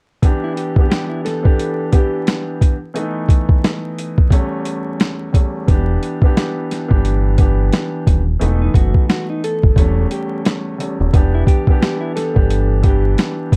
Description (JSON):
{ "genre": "hip hop, boom-bap hip-hop", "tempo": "88 BPM", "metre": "4/4", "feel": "swing 59% on 16ths", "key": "E dorian", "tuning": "A4 = 440 Hz", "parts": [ { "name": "dark baby grand piano", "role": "accompaniment", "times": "0.2-13.6 s", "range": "E2 to G4", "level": "-24 LUFS", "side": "equal", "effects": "cassette tape, high-pass filter, low-pass filter, plate reverb" }, { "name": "boom bap sampler-style drum kit", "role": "drums", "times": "0.2-13.6 s", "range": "hi-hat, kick drum, snare drum", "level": "-16 LUFS", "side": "equal", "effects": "none" }, { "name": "mellow electric guitar", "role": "melody", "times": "0.4-2.2, 8.6-13.2 s", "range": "D#4 to A4", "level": "-26 LUFS", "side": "equal", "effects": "high-pass filter, low-pass filter, plate reverb" }, { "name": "deep dub fingered electric bass", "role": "bass", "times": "5.7-13.6 s", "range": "D#1 to G1", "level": "-18 LUFS", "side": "equal", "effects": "none" } ], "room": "light reverb", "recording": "dark, warm production, vinyl crackle", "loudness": "-16 LUFS", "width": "mono", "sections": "0.2-11.1 A section; 11.1-13.6 B section", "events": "none", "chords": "0.2 Em7; 3.0 B7/E; 4.3 A7/E; 5.7 Em7; 8.4 B7/E; 9.8 A7/E; 11.1 Em7", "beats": "| 0.23 0.91 1.59 2.27 | 2.96 3.64 4.32 5.00 | 5.68 6.37 7.05 7.73 | 8.41 9.09 9.78 10.46 | 11.14 11.82 12.50 13.18" }